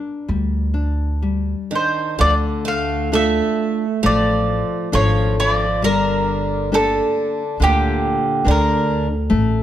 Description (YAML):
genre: fado-style ballad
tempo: 60-71 BPM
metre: 4/4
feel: rubato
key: D minor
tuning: A4 = 439 Hz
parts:
  - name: mandolin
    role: melody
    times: 0.0-9.1 s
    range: G4 to F5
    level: -20 LUFS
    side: right 1 dB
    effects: slapback echo
  - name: nylon-string guitar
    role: accompaniment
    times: 0.0-9.6 s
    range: D3 to Bb4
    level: -23 LUFS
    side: left 5 dB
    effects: none
  - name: upright bass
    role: bass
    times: 0.3-9.6 s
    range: G1 to D2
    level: -20 LUFS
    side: equal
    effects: none
  - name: picked twelve-string acoustic guitar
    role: second line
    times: 1.7-9.1 s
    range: Bb2 to A3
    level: -23 LUFS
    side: right 4 dB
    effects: none
room: light reverb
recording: close, detailed microphones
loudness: -16 LUFS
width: side -11 dB against mid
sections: 0.0-2.2 A section; 2.2-9.6 B section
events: none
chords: 0.0 Gm; 2.2 Dm; 5.8 Gm